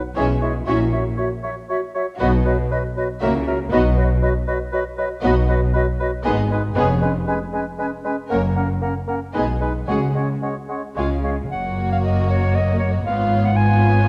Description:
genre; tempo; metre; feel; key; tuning
quick classical-period movement for symphony orchestra; 118 BPM; 3/4; rubato; B major, F# major from 5.2 s; A4 = 440 Hz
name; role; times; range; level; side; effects
warm clarinet; second line; 0.0-14.1 s; C#4 to G#5; -29 LUFS; equal; none
warm oboe; second line; 0.0-11.4 s; A#4 to C#5; -32 LUFS; equal; none
mellow bassoon; accompaniment; 0.0-11.4 s; F#3 to A#3; -30 LUFS; equal; none
warm studio violin section; melody; 0.2-14.1 s; C#5 to F#5; -35 LUFS; equal; none
silver concert flute; second line; 0.2-11.3 s; D#5 to G#5; -33 LUFS; equal; none
warm studio violin section; second line; 0.2-14.1 s; E#4 to A#4; -31 LUFS; equal; none
rich studio viola section; accompaniment; 0.2-14.1 s; G#3 to C#4; -30 LUFS; equal; none
dark French horn section; sustained chords; 0.2-11.2 s; E3 to F#4; -31 LUFS; equal; none
rich studio cello section; bass; 0.2-14.1 s; E#2 to C#3; -26 LUFS; equal; none
rich studio double bass section; bass; 0.2-14.1 s; E#1 to C#2; -26 LUFS; equal; none
timpani; percussion; 9.9-10.7 s; C#3; -36 LUFS; equal; none
room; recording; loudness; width
moderate scoring stage reverb, RT60 2.0 s; dark, warm production; -20 LUFS; mono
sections
0.0-11.5 A section; 11.5-14.1 B section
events
none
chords
0.2 C#m7/B; 0.7 F#7/A#; 2.2 B; 3.2 F#7/C#; 3.7 B; 6.3 G#m; 6.8 C#7/E#; 8.3 F#; 9.3 G#m/B; 9.9 C#sus4; 11.0 C#; 11.5 F#; 13.1 C#7/G#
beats
0.17 | 0.68 1.18 1.69 | 2.20 2.71 3.22 | 3.72 4.22 4.73 | 5.23 5.74 6.25 | 6.76 7.28 7.79 | 8.31 8.82 9.35 | 9.88 10.43 10.97 | 11.52 12.04 12.55 | 13.06 13.57 14.07

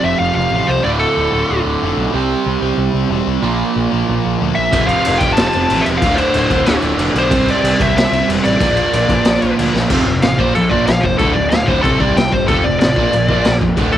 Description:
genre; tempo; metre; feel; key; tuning
punk rock; 186 BPM; 4/4; straight; unclear; A4 = 441 Hz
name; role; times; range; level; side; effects
nasal lead guitar with a parked wah; melody; 0.0-1.6, 4.6-14.0 s; A4 to A5; -17 LUFS; left 1 dB; overdrive, cassette tape, tape echo
overdriven semi-hollow guitar; riff; 0.0-14.0 s; D2 to C4; -18 LUFS; right 7 dB; cassette tape
tight distorted guitar; riff; 0.0-14.0 s; D2 to C4; -23 LUFS; left 9 dB; distortion, cassette tape
fuzz picked electric bass; bass; 0.0-14.0 s; D1 to D2; -21 LUFS; left 1 dB; overdrive
overdriven electric guitar; riff; 4.7-14.0 s; D2 to C4; -24 LUFS; left 1 dB; none
raw garage drum kit; drums; 4.7-13.9 s; crash cymbal, kick drum, snare drum; -17 LUFS; left 1 dB; cassette tape
room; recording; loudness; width
small room ambience; home recording on cassette; -12 LUFS; side -11 dB against mid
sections
0.0-9.9 A section; 9.9-14.0 B section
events
half time 0.0-9.9; drum fill 9.7; lead electric guitar solo 9.9-14.0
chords
0.0 F5; 0.8 D5; 2.1 C5; 3.4 Bb5; 4.7 F; 6.0 D5; 7.3 C; 8.6 Bb; 9.9 F; 10.4 Bb5; 11.2 D5; 11.8 C5; 12.5 F; 13.0 Bb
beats
0.20 0.52 | 0.84 1.17 1.49 1.81 | 2.14 2.46 2.79 3.11 | 3.43 3.76 4.08 4.40 | 4.73 5.05 5.37 5.70 | 6.02 6.34 6.67 6.99 | 7.31 7.64 7.96 8.28 | 8.61 8.93 9.25 9.58 | 9.90 10.22 10.55 10.87 | 11.19 11.52 11.84 12.16 | 12.49 12.81 13.13 13.46 | 13.78

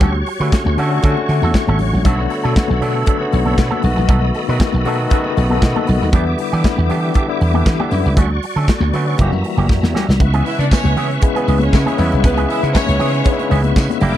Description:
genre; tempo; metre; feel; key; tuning
disco; 118 BPM; 4/4; straight; unclear; A4 = 439 Hz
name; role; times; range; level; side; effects
barky tine electric piano; accompaniment; 0.0-14.2 s; C#3 to F#5; -21 LUFS; left 5 dB; overdrive, medium stereo tremolo
electric guitar with an envelope filter; accompaniment; 0.0-14.2 s; E3 to B4; -23 LUFS; right 6 dB; tube saturation
bright tonewheel organ; sustained chords; 0.0-14.2 s; G3 to D6; -25 LUFS; right 1 dB; chorus vibrato, fast rotary speaker
slap bass; bass; 0.0-14.2 s; F#1 to E3; -17 LUFS; equal; none
modern studio drum kit; drums; 0.0-14.2 s; handclaps, hi-hat, kick drum, snare drum; -15 LUFS; equal; none
congas; percussion; 0.0-14.1 s; none; -24 LUFS; left 4 dB; none
rich studio string section; second line; 10.5-13.5 s; B3 to E5; -21 LUFS; right 1 dB; none
tambourine; percussion; 10.7-13.9 s; none; -33 LUFS; right 20 dB; none
room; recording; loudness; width
little or no reverb; dry, close 1970s-style studio recording; -13 LUFS; side -12 dB against mid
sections
0.0-10.2 A section; 10.2-14.2 B section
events
tine electric piano fill 0.5-2.1, 5.1-6.1, 13.5-14.2; drum fill 9.7-10.2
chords
0.0 Dmaj7; 2.1 Bm7; 3.8 B7; 6.1 Em7; 8.2 Dmaj7; 9.2 F#7b9; 10.2 C#m7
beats
| 0.01 0.52 1.03 1.54 | 2.05 2.56 3.07 3.58 | 4.09 4.60 5.11 5.62 | 6.13 6.64 7.15 7.66 | 8.17 8.68 9.19 9.70 | 10.21 10.71 11.22 11.73 | 12.24 12.75 13.26 13.76

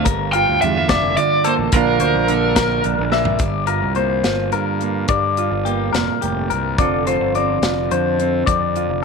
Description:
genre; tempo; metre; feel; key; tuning
math rock and midwest emo; 71 BPM (dotted quarters); 6/8; straight; unclear; A4 = 444 Hz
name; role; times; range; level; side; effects
mellow electric guitar; accompaniment; 0.0-9.0 s; F2 to A4; -21 LUFS; right 12 dB; none
clean electric guitar; arpeggios; 0.0-9.0 s; G4 to F5; -21 LUFS; left 11 dB; slapback echo
fuzz fingered electric bass; bass; 0.0-9.0 s; F1 to G2; -24 LUFS; equal; overdrive
crisp fusion drum kit; drums; 0.1-8.9 s; hi-hat, kick drum, snare drum, toms; -22 LUFS; left 1 dB; none
overdriven electric guitar; melody; 0.3-2.8 s; Bb4 to G5; -19 LUFS; equal; tremolo, slapback echo
room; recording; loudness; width
moderate spring reverb, RT60 1.6 s, small room ambience; 1960s-style stereo with parts hard left and right; -16 LUFS; side -4 dB against mid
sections
0.0-3.4 A section; 3.4-9.0 B section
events
drum fill 3.1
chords
0.1 Gm7; 1.7 Bbmaj7; 3.4 Gm7; 6.8 Dm7/F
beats
| 0.06 0.90 | 1.74 2.58 | 3.42 4.26 | 5.10 5.95 | 6.79 7.64 | 8.48

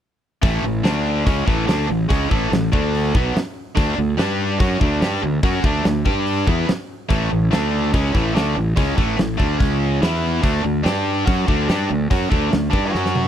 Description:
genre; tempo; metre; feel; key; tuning
classic rock; 144 BPM; 4/4; straight; unclear; A4 = 440 Hz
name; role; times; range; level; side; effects
cranked stack guitar; riff; 0.4-13.3 s; A2 to G4; -20 LUFS; equal; overdrive
fuzz fingered electric bass; bass; 0.4-13.3 s; A1 to G2; -22 LUFS; equal; overdrive
big rock drum kit; drums; 0.4-13.3 s; hi-hat, kick drum, snare drum, toms; -21 LUFS; equal; none
room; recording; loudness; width
small room ambience; dry, close 1970s-style studio recording; -17 LUFS; side -10 dB against mid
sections
0.4-13.3 A section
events
drum fill 12.9-13.3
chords
0.4 A5; 0.8 D5; 1.3 A; 2.7 D5; 3.1 F#sus4; 3.8 D5; 4.2 G5; 4.6 D5; 6.1 G5; 6.5 Bsus4; 7.1 A5; 7.5 D5; 7.9 A; 9.6 C#5; 10.0 E5; 10.4 D5; 10.9 G5; 11.3 D5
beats
| 0.43 0.85 1.27 1.68 | 2.10 2.52 2.93 3.35 | 3.77 4.18 4.60 5.01 | 5.43 5.85 6.26 6.68 | 7.10 7.51 7.93 8.35 | 8.77 9.18 9.60 10.02 | 10.43 10.85 11.27 11.69 | 12.10 12.52 12.94

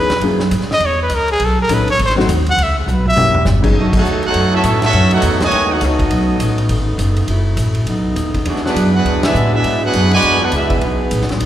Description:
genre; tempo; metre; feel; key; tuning
jazz, big band swing; 204 BPM; 4/4; swing 61% on 8ths; B major from 3.8 s; A4 = 440 Hz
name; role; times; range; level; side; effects
clear trumpet; melody; 0.0-3.4 s; G#4 to F#5; -16 LUFS; equal; none
warm grand piano; accompaniment; 0.0-3.7 s; F#3 to A4; -20 LUFS; left 3 dB; none
upright bass; bass; 0.0-11.5 s; D#1 to A2; -16 LUFS; equal; none
vintage drum kit; drums; 0.1-11.5 s; crash cymbal, hi-hat, kick drum, ride cymbal, snare drum, toms; -22 LUFS; equal; none
clear trumpet section; melody; 3.8-11.4 s; B3 to G#5; -17 LUFS; right 1 dB; none
clear trombone section; second line; 3.8-11.4 s; A2 to F#4; -20 LUFS; right 1 dB; none
mellow saxophone section; sustained chords; 3.8-11.5 s; C#3 to E4; -24 LUFS; left 2 dB; none
room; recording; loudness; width
wet concert hall reverb, RT60 1.8 s; recorded in a church or concert hall; -12 LUFS; side -12 dB against mid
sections
0.0-3.8 A section; 3.8-11.5 B section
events
trumpet solo 0.0-3.8; drum fill 2.9-3.5; band accent 3.9, 9.2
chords
0.2 F#9; 1.4 B9; 2.0 G#7b9; 2.6 E6; 3.2 F#7b9; 3.8 B9; 7.3 F#m7; 7.9 B9; 8.5 E9; 10.8 B9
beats
| 0.22 0.51 0.81 1.10 | 1.40 1.69 1.99 2.28 | 2.57 2.87 3.16 3.46 | 3.75 4.05 4.34 4.64 | 4.93 5.23 5.52 5.82 | 6.11 6.40 6.70 6.99 | 7.29 7.58 7.88 8.17 | 8.47 8.76 9.06 9.35 | 9.65 9.94 10.23 10.53 | 10.82 11.12 11.41

